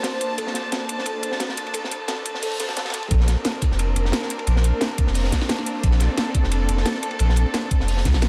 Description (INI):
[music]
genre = liquid drum and bass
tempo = 176 BPM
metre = 4/4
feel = swing 53% on 16ths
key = Bb major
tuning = A4 = 440 Hz
[part]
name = warm studio string section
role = sustained chords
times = 0.0-8.3 s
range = Bb3 to A5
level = -31 LUFS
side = equal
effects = sidechain pumping
[part]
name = harp-like synth pluck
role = arpeggios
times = 0.0-3.0 s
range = A4 to C5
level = -34 LUFS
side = equal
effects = chorus, dub echo
[part]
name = crunchy breakbeat drum kit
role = drums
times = 0.0-8.3 s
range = hi-hat, ride cymbal, snare drum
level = -32 LUFS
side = equal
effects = high-pass filter on cymbals, high-pass filter on hats, high-pass filter on snare, high-pass filter on room
[part]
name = drum and bass drum kit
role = drums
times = 0.0-8.3 s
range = hi-hat, snare drum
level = -29 LUFS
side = equal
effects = none
[part]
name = electronic kick drum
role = drums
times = 0.0-8.1 s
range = none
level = -24 LUFS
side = equal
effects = high-pass filter on kick, high-pass filter on room
[part]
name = saturated sub bass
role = bass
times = 3.1-8.3 s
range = F1 to D2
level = -22 LUFS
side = equal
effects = none
[sound]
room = small room reverb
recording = high-pass filter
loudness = -22 LUFS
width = mono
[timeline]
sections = 0.0-3.1 A section; 3.1-8.3 B section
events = build-up 0.0-3.1; filter sweep on synth pluck 0.0-3.1; drum fill 0.4-3.1; drop 3.1-8.3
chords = 0.0 Bbmaj9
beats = 0.04 | 0.38 0.72 1.06 1.40 | 1.75 2.09 2.43 2.77 | 3.11 3.45 3.79 4.13 | 4.47 4.81 5.15 5.50 | 5.84 6.18 6.52 6.86 | 7.20 7.54 7.88 8.22